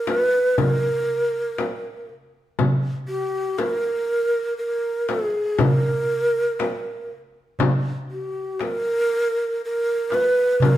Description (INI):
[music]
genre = Turkish makam ensemble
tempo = 119 BPM (eighths)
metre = 10/8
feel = straight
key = unclear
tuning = A4 = 440 Hz
[part]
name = breathy mellow ney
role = melody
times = 0.0-10.8 s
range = G4-45c to Cb5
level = -21 LUFS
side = right 1 dB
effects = none
[part]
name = darbuka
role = percussion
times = 0.1-10.8 s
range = none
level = -22 LUFS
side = equal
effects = none
[part]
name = frame drum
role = percussion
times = 0.1-10.8 s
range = none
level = -25 LUFS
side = left 4 dB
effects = none
[sound]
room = wet stone room reverb, RT60 1.4 s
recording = band playing live in one room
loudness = -20 LUFS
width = side -13 dB against mid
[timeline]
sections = 0.0-10.8 A section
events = none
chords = none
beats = 0.07 0.57 1.07 1.58 2.08 | 2.58 3.08 3.59 4.09 4.59 5.09 5.60 6.10 6.60 7.10 | 7.61 8.11 8.61 9.11 9.61 10.12 10.62